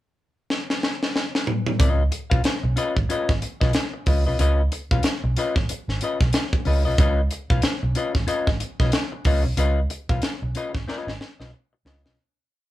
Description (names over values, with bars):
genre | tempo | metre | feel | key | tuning
funk | 92 BPM | 4/4 | swing 60% on 16ths | Db mixolydian | A4 = 440 Hz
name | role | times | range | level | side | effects
tight funk drum kit | drums | 0.5-12.2 s | hi-hat, kick drum, snare drum, toms | -23 LUFS | equal | none
semi-hollow electric guitar | accompaniment | 1.8-12.2 s | Db4 to F5 | -26 LUFS | left 4 dB | none
vintage muted fingered electric bass | bass | 1.8-12.2 s | Ab1 to Db2 | -22 LUFS | right 1 dB | none
room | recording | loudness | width
moderate studio reverb, RT60 0.6 s | band playing live in one room | -20 LUFS | side -15 dB against mid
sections
0.0-1.8 pickup bar; 1.8-12.2 groove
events
drum fill 0.5-1.8, 10.9-12.2; fade-out 9.6-12.2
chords
0.0 N.C.; 1.8 Db9